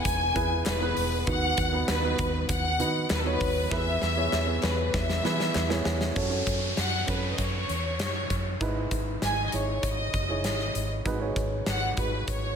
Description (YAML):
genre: piano-driven pop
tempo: 98 BPM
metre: 4/4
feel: straight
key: E major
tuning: A4 = 440 Hz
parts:
  - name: bright studio violin section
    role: melody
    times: 0.0-12.6 s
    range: A4 to G#5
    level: -30 LUFS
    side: left 2 dB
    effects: tape echo
  - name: dark upright piano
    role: accompaniment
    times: 0.0-12.6 s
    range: G#2 to C#5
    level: -32 LUFS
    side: right 4 dB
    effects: none
  - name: vintage muted fingered electric bass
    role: bass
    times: 0.1-12.5 s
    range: E1 to E3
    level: -31 LUFS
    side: equal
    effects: none
  - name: huge arena drum kit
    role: drums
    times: 0.1-12.4 s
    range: hi-hat, kick drum, snare drum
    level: -31 LUFS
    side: left 1 dB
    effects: none
  - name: group handclap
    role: percussion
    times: 0.7-5.7 s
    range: none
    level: -43 LUFS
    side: left 3 dB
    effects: none
  - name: downlifter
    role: sound effects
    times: 6.2-11.1 s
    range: none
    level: -36 LUFS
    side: equal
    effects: none
room: light reverb, small room ambience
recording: echo-heavy mix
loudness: -25 LUFS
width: side -7 dB against mid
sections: 0.0-6.2 A section; 6.2-12.6 B section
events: drum fill 3.7-6.2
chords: 0.0 E; 1.3 B/D#; 3.7 E; 6.2 F#m; 8.6 Emaj7/G#; 11.1 G#m7